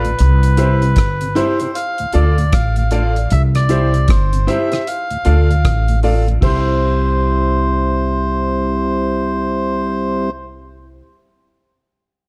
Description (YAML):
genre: roots reggae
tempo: 77 BPM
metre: 4/4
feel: swing 62% on 16ths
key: C major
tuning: A4 = 442 Hz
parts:
  - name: melodica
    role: melody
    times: 0.0-10.3 s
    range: B4 to F5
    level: -24 LUFS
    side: equal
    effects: none
  - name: mellow electric guitar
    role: accompaniment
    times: 0.0-11.1 s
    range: E4 to D5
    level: -28 LUFS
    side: equal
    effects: spring reverb
  - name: mellow tonewheel organ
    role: accompaniment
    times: 0.0-10.3 s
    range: D2 to F4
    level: -24 LUFS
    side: equal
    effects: slow rotary speaker
  - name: bright concert grand piano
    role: stabs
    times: 0.0-11.0 s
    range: E4 to F5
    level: -25 LUFS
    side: equal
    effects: none
  - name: upright bass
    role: bass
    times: 0.0-11.0 s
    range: G1 to D2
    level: -18 LUFS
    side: equal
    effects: none
  - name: damped 70s drum kit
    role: drums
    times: 0.0-6.6 s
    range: crash cymbal, hi-hat, kick drum, rim click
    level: -21 LUFS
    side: equal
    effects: none
room: studio reverb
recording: none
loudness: -16 LUFS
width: mono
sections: 0.0-6.4 A section; 6.4-9.5 B section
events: none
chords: 0.2 C; 1.7 Dm; 3.3 C; 4.9 Dm; 6.4 C